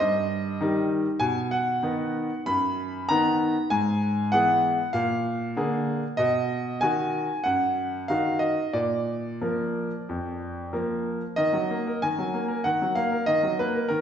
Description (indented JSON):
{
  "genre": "classical-period piano sonatina",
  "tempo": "89-100 BPM",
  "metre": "4/4",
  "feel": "rubato",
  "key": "Eb minor",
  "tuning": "A4 = 440 Hz",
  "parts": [
    { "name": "bright grand piano", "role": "solo", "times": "0.0-14.0 s", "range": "F2 to B5", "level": "-23 LUFS", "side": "equal", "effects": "none" }
  ],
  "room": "wet recital hall reverb, RT60 1.6 s",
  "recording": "heard from further back in the room, nothing above 7.9 kHz",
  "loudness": "-23 LUFS",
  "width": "side -8 dB against mid",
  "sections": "0.0-11.4 A section; 11.4-14.0 B section",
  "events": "none",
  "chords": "0.0 Cm (rootless); 1.2 B; 3.7 E/G#; 4.9 Bb7; 6.2 B; 8.8 Bb; 11.4 Ebm",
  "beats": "0.01 0.61 | 1.22 1.83 2.46 3.09 | 3.71 4.32 4.93 5.56 | 6.18 6.83 7.46 8.10 | 8.75 9.41 10.08 10.74 | 11.39 12.04 12.67 13.29 | 13.92"
}